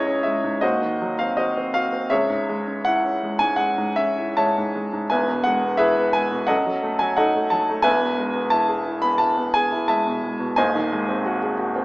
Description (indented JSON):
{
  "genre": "classical, romantic character piece for solo piano",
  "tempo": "74-91 BPM",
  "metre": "4/4",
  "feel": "rubato",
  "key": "unclear",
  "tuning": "A4 = 440 Hz",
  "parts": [
    { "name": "clear baby grand piano", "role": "solo", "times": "0.0-11.8 s", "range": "Eb1 to B5", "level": "-19 LUFS", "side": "equal", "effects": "none" }
  ],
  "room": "wet recital hall reverb, RT60 1.3 s",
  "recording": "small speaker sound",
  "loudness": "-19 LUFS",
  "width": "side -21 dB against mid",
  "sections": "0.0-11.8 A section",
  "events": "none",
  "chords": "0.0 C#m; 0.6 Cdim/Eb; 2.1 C#m; 5.1 E; 6.5 D#dim/F#; 7.9 E; 10.6 Ab7/Eb"
}